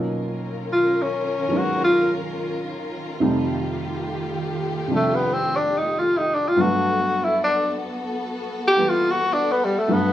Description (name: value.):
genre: jazz ballad.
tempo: 72 BPM.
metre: 4/4.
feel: swing 66% on 8ths.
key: unclear.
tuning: A4 = 441 Hz.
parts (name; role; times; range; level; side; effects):
warm baby grand piano; accompaniment; 0.0-10.1 s; F2 to E#4; -26 LUFS; right 1 dB; none.
warm symphonic string section; sustained chords; 0.0-10.1 s; D#3 to A#4; -28 LUFS; left 1 dB; none.
clear tenor saxophone; melody; 0.7-10.1 s; G3 to G4; -19 LUFS; left 1 dB; plate reverb.
room: moderate studio reverb, RT60 0.9 s.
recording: worn, warbling old tape, cassette tape, warbly pitch drift, small room ambience.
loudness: -20 LUFS.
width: side -12 dB against mid.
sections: 0.0-10.1 A section.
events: tenor saxophone solo 0.0-10.1.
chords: 0.0 Bmaj9#11; 3.2 F9; 6.6 Gmaj9.